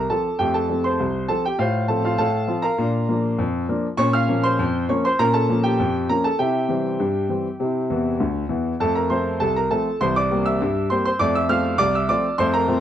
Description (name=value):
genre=ragtime piano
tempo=100 BPM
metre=2/4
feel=straight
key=F major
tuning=A4 = 437 Hz
part: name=clear concert grand piano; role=solo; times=0.0-12.8 s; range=C2 to F6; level=-19 LUFS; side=equal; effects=none
room=light reverb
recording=worn, warbling old tape, cassette tape, warbly pitch drift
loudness=-19 LUFS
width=side -10 dB against mid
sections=0.0-12.8 A section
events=grand piano fill 7.9-8.8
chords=0.0 F; 1.6 F/A; 2.8 Bb; 4.0 Bbm; 6.4 C; 8.8 F; 10.0 C7; 11.2 F